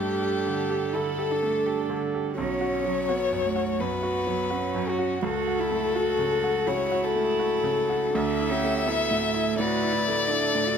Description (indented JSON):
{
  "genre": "neoclassical piano and strings",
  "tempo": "84 BPM",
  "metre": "4/4",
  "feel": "rubato",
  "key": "D major",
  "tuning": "A4 = 437 Hz",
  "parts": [
    { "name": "warm violin", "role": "melody", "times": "0.0-10.8 s", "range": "F#4 to E5", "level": "-26 LUFS", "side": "left 5 dB", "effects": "none" },
    { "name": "warm cello", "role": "second line", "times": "0.0-10.8 s", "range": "A3 to F#4", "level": "-31 LUFS", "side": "right 8 dB", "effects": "none" },
    { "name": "bright concert grand piano", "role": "accompaniment", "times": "0.0-10.8 s", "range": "B1 to G4", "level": "-29 LUFS", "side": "right 2 dB", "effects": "none" },
    { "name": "dark viola", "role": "accompaniment", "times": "0.0-10.8 s", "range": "F#4 to B4", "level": "-32 LUFS", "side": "right 5 dB", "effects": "none" }
  ],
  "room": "light reverb",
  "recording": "none",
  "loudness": "-23 LUFS",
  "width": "side -7 dB against mid",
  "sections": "0.0-10.8 A section",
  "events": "none",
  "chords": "0.0 Gsus2; 2.4 Bsus2; 5.2 F#m/C#; 8.1 Dsus2",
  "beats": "0.21 0.94 1.66 | 2.37 3.09 3.79 4.51 | 5.23 5.96 6.67 7.39 | 8.14 8.86 9.58 10.30"
}